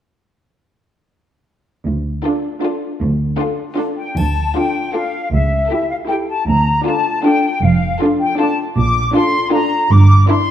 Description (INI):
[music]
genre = cinematic, playful, whimsical film cue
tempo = 157 BPM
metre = 3/4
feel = straight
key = D minor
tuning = A4 = 440 Hz
[part]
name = dark studio cello section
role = bass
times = 1.9-10.2 s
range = C#2 to Bb2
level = -17 LUFS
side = right 1 dB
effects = none
[part]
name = rich studio violin section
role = melody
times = 2.2-10.5 s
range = A4 to Bb4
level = -26 LUFS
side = left 4 dB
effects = none
[part]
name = warm studio violin section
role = second line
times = 2.2-10.5 s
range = E4 to G4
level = -24 LUFS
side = left 4 dB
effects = none
[part]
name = dark studio viola section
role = accompaniment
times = 2.3-10.5 s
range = D4 to E4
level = -20 LUFS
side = right 1 dB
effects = none
[part]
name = bright flute section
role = second line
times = 4.0-10.5 s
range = E5 to D6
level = -18 LUFS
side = left 2 dB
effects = none
[part]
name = dark studio double bass section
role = bass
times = 4.2-10.2 s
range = F1 to D2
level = -16 LUFS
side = right 2 dB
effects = none
[part]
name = triangle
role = percussion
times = 4.2-4.9 s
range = none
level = -43 LUFS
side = left 2 dB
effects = none
[sound]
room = moderate scoring stage reverb, RT60 1.6 s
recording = dark, warm production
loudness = -14 LUFS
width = side -10 dB against mid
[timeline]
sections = 1.9-4.2 A section; 4.2-10.5 B section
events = none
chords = 1.9 Dm; 5.3 A7/C#; 6.5 Dm; 7.6 Dm/F; 8.8 Bbmaj7; 9.9 Em7b5/G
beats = | 1.87 2.25 2.63 | 3.01 3.40 3.78 | 4.17 4.56 4.94 | 5.33 5.71 6.10 | 6.48 6.86 7.24 | 7.62 8.01 8.39 | 8.77 9.15 9.53 | 9.91 10.29